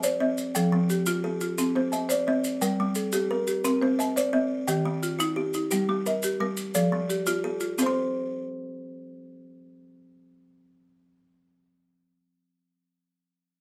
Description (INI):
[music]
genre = southern african traditional, mbira-style interlocking cycle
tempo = 116 BPM (dotted quarters)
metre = 12/8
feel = straight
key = C equiheptatonic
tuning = A4 = 440 Hz
[part]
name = buzzing kalimba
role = arpeggios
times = 0.0-12.0 s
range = Eb3+43c to C6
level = -30 LUFS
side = equal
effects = none
[part]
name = buzzing marimba with medium mallets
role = arpeggios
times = 0.0-12.0 s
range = Eb3+43c to C6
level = -29 LUFS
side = equal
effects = none
[part]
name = maracas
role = percussion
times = 0.0-7.9 s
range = none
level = -36 LUFS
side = equal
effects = none
[sound]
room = moderate studio ambience, RT60 0.5 s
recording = none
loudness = -26 LUFS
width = mono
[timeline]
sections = 0.0-7.8 A section; 7.8-11.9 B section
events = none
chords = 0.0 Cm; 0.5 F; 1.6 Cm; 2.6 Gm; 3.6 Cm; 4.7 Eb; 5.7 Gm; 6.7 F; 7.8 N.C.